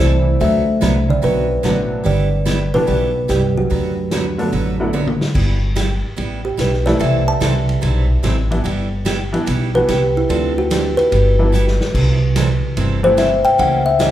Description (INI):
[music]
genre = country, western swing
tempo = 146 BPM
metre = 4/4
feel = swing 67% on 8ths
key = G major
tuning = A4 = 438 Hz
[part]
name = kalimba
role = melody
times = 0.0-14.1 s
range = E4 to A5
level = -18 LUFS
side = equal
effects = none
[part]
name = hollow-body jazz guitar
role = second line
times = 0.0-4.9 s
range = F#2 to A3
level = -22 LUFS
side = right 1 dB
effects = none
[part]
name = honky-tonk upright piano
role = accompaniment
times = 0.0-13.2 s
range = D3 to F#4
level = -22 LUFS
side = left 1 dB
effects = none
[part]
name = picked steel-string acoustic guitar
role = accompaniment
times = 0.0-14.1 s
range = C3 to B4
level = -24 LUFS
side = right 4 dB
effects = none
[part]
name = upright bass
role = bass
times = 0.0-14.1 s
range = G1 to D2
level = -18 LUFS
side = equal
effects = none
[part]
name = vintage drum kit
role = drums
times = 0.0-14.1 s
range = crash cymbal, hi-hat, kick drum, ride cymbal, snare drum, toms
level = -25 LUFS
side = left 1 dB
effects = none
[sound]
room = moderate large studio reverb, RT60 1.4 s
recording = band playing live in one room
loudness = -14 LUFS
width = side -12 dB against mid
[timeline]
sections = 0.0-5.4 A section; 5.4-14.1 B section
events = drum fill 4.9-5.4, 11.5-11.9; kalimba solo 5.4-14.1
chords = 0.4 D6; 2.1 G6; 3.7 D6; 5.4 G6; 7.0 C6; 8.7 G6; 10.3 Dm7; 11.1 G6; 11.9 C6; 13.6 C#dim7